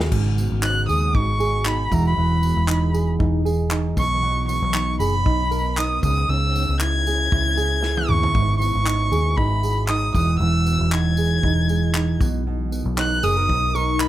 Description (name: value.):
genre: acoustic pop.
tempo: 117 BPM.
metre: 4/4.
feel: swing 55% on 16ths.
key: unclear.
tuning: A4 = 440 Hz.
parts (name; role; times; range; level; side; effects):
nylon-string guitar; accompaniment; 0.0-14.1 s; G#2 to A#4; -24 LUFS; right 4 dB; none.
shimmering ambient pad; sustained chords; 0.1-14.1 s; B2 to A#4; -32 LUFS; left 3 dB; chorus, built-in reverb, phaser.
vintage muted fingered electric bass; bass; 0.0-14.1 s; E1 to D#2; -22 LUFS; left 1 dB; none.
natural country drum kit; drums; 0.0-14.1 s; crash cymbal, handclaps, kick drum, snare drum, tambourine, toms; -25 LUFS; left 1 dB; none.
dark violin; melody; 0.6-14.1 s; A#5 to G#6; -23 LUFS; equal; none.
room: light reverb.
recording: none.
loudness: -18 LUFS.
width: side -14 dB against mid.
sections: 0.1-14.1 A section.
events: drum fill 7.8-8.3.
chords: 0.1 G#m7; 1.9 Emaj7; 4.0 Bmaj7; 6.0 C#m7; 8.3 G#m7; 10.1 Emaj7; 12.2 Bmaj7.